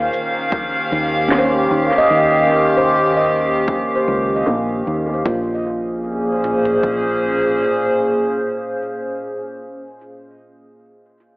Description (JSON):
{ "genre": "ambient dub", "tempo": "76 BPM", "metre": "4/4", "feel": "swing 54% on 16ths", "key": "Bb dorian", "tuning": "A4 = 440 Hz", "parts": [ { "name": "warbly tape-like pad", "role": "sustained chords", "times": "0.0-9.2 s", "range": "Bb2 to F5", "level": "-18 LUFS", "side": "equal", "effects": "chorus, built-in reverb, phaser" }, { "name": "handpan", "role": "arpeggios", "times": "0.0-9.6 s", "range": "Db4 to Eb5", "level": "-20 LUFS", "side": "right 1 dB", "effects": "low-pass filter, tape echo" }, { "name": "fingered electric bass", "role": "bass", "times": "0.0-7.6 s", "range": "Bb1 to Eb2", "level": "-25 LUFS", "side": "equal", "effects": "tube saturation" }, { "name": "electronic shaker and snare drum", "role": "drums", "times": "0.1-5.0 s", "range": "none", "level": "-24 LUFS", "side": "equal", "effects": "none" }, { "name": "deep house drum kit", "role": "drums", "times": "0.5-7.0 s", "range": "kick drum, toms", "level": "-25 LUFS", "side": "equal", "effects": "none" } ], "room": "wet echo chamber reverb, RT60 2.1 s", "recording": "AM radio sound", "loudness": "-15 LUFS", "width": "side -23 dB against mid", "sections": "0.0-5.3 A section; 5.3-8.4 B section", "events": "filter sweep on handpan 0.0-5.3", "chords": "0.0 Eb7; 5.3 Bbm7", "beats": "0.52 1.31 | 2.10 2.89 3.68 4.47 | 5.26 6.05 6.84 7.63" }